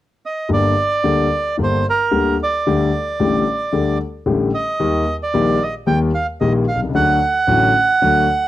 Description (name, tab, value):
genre	tango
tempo	112 BPM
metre	4/4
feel	rubato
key	G minor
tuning	A4 = 444 Hz
part	bandoneon	melody	0.3-8.5 s	Bb4 to G5	-18 LUFS	right 3 dB	none
part	warm concert grand piano	accompaniment	0.5-8.3 s	G1 to G4	-17 LUFS	left 3 dB	none
room	light reverb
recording	dry, close 1970s-style studio recording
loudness	-15 LUFS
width	side -14 dB against mid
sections	0.5-8.5 A section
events	none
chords	0.0 N.C.; 0.5 Gm; 2.7 Dsus4; 4.8 Eb; 6.9 D